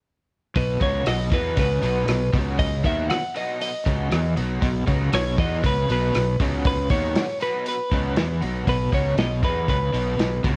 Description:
indie rock; 118 BPM; 4/4; straight; B major; A4 = 440 Hz
clean electric guitar; melody; 0.6-10.4 s; B4 to F#5; -28 LUFS; equal; tape echo
crunchy overdriven guitar; riff; 0.6-10.6 s; B2 to E3; -30 LUFS; equal; tremolo
fuzz fingered electric bass; bass; 0.6-10.6 s; B1 to E2; -28 LUFS; equal; overdrive
vintage drum kit; drums; 0.6-10.6 s; hi-hat, kick drum, rim click, snare drum; -28 LUFS; equal
raw garage guitar; riff; 0.8-10.6 s; B2 to D#4; -34 LUFS; equal; overdrive, analog chorus, tape echo
small room ambience; worn, warbling old tape, cassette tape, warbly pitch drift; -23 LUFS; mono
0.6-10.6 A section
0.6 B

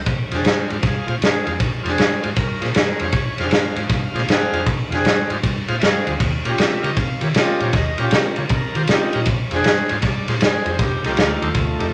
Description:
electric blues shuffle; 157 BPM; 4/4; swing 65% on 8ths; Bb mixolydian; A4 = 440 Hz
vintage muted fingered electric bass; bass; 0.0-11.9 s; F1 to Eb3; -28 LUFS; equal
raw garage drum kit; drums; 0.1-11.9 s; kick drum, ride cymbal, snare drum; -21 LUFS; equal
bright tonewheel organ; accompaniment; 0.3-11.9 s; A3 to F5; -29 LUFS; equal; overdrive, slow rotary speaker
warm horn section; stabs; 0.3-11.5 s; A3 to Ab4; -26 LUFS; equal
moderate large studio reverb, RT60 0.9 s; -19 LUFS; mono
0.1-11.9 A section
0.1 Bb9; 6.2 Eb9; 9.3 Bb9; 10.8 F9

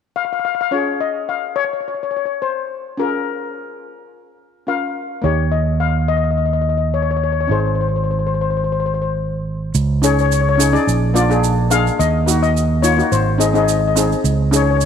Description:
calypso; 106 BPM; 4/4; swing 53% on 16ths; Db major; A4 = 444 Hz
steel pan; melody; 0.2-14.8 s; Bb4 to F5; -20 LUFS; left 10 dB
steel pan; accompaniment; 0.7-14.9 s; Bb3 to Bb4; -20 LUFS; left 1 dB
fingered electric bass; bass; 5.2-14.9 s; Ab1 to Eb2; -17 LUFS; right 3 dB
tube shaker; percussion; 9.7-14.9 s; -24 LUFS; right 18 dB
light reverb; 1960s-style stereo with parts hard left and right; -15 LUFS; side -7 dB against mid
0.7-9.7 A section; 9.7-14.9 B section
0.0 N.C.; 0.7 Db6; 5.2 Eb; 7.5 Ab; 9.7 Dbsus2; 10.9 Bb7; 12.0 Ebm; 13.1 Ab; 14.2 Dbsus2

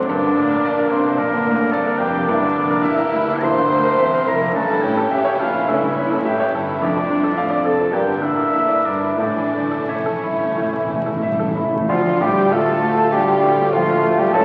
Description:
classical, romantic movement for piano and orchestra; 86-114 BPM; 4/4; rubato; D minor; A4 = 440 Hz
bright grand piano; melody; 0.0-14.4 s; C#2 to F5; -23 LUFS; equal
clear studio violin section; melody; 0.0-14.4 s; C#4 to A5; -38 LUFS; equal
warm studio violin section; second line; 0.0-14.4 s; A3 to A4; -33 LUFS; equal
warm studio viola section; accompaniment; 0.0-14.4 s; A3 to C5; -26 LUFS; equal
mellow French horn section; sustained chords; 0.0-14.4 s; F3 to E4; -27 LUFS; equal
bright studio cello section; bass; 0.0-14.4 s; D2 to A3; -32 LUFS; equal
rich studio double bass section; bass; 0.0-14.4 s; E1 to D2; -36 LUFS; equal
clear oboe; second line; 0.1-11.2 s; A4 to C6; -26 LUFS; equal
timpani; percussion; 9.2-12.8 s; A2 to D3; -30 LUFS; equal
mellow flute section; second line; 11.9-14.4 s; F5 to A5; -24 LUFS; equal
warm clarinet; second line; 11.9-14.4 s; F4 to A4; -25 LUFS; equal
mellow bassoon; accompaniment; 11.9-14.4 s; A3 to F4; -26 LUFS; equal
dark trumpet; stabs; 11.9-14.4 s; F4 to A4; -26 LUFS; equal
clear tuba; bass; 11.9-14.4 s; C#2 to D2; -30 LUFS; equal
wet scoring stage reverb, RT60 1.7 s; very old 78 rpm record, vinyl crackle; -18 LUFS; mono
0.0-11.9 A section; 11.9-14.4 B section
timpani fill 9.2-11.9
0.1 Gm; 2.3 Em7b5; 4.5 A7/G; 6.8 Dm/F; 7.9 Em7b5/G; 9.2 A; 11.9 Dm

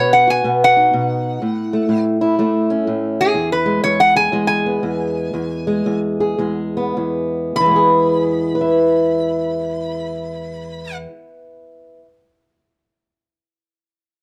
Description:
acoustic country blues, solo or duo; 98-124 BPM; 4/4; swing 64% on 8ths; E major; A4 = 440 Hz
lap resonator guitar; melody; 0.0-11.0 s; G#4 to B5; -18 LUFS; equal
fingerpicked old ladder-braced acoustic guitar; accompaniment; 0.0-12.1 s; E2 to E5; -20 LUFS; equal
light reverb; -17 LUFS; mono
0.0-7.6 A section; 7.6-12.4 B section
slowing down 3.3-7.6
0.0 B; 1.4 A; 3.3 E

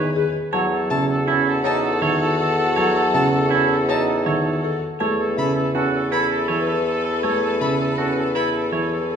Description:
classical, minimalist pattern music; 161 BPM; 6/4; straight; A4 = 439 Hz
buzzing marimba with medium mallets; melody; 0.0-9.2 s; G#4 to A5; -30 LUFS; left 6 dB
clear oboe; second line; 0.0-9.2 s; A4 to B4; -27 LUFS; right 2 dB
warm grand piano; accompaniment; 0.0-9.0 s; C#3 to C#4; -24 LUFS; right 2 dB
rich chamber string section; sustained chords; 0.0-9.2 s; C#4 to B4; -26 LUFS; left 4 dB
clean electric guitar; arpeggios; 0.0-9.0 s; D#4 to C#5; -25 LUFS; right 6 dB
mellow bassoon; bass; 0.0-9.2 s; E2; -24 LUFS; equal
warm violin; arpeggios; 0.9-8.5 s; A5 to B5; -29 LUFS; left 4 dB
wet recital hall reverb, RT60 1.8 s; recorded in a church or concert hall; -18 LUFS; side -7 dB against mid
0.0-9.2 A section
0.0 C#m7/E; 0.5 F#m7/E; 5.0 B7sus4/E

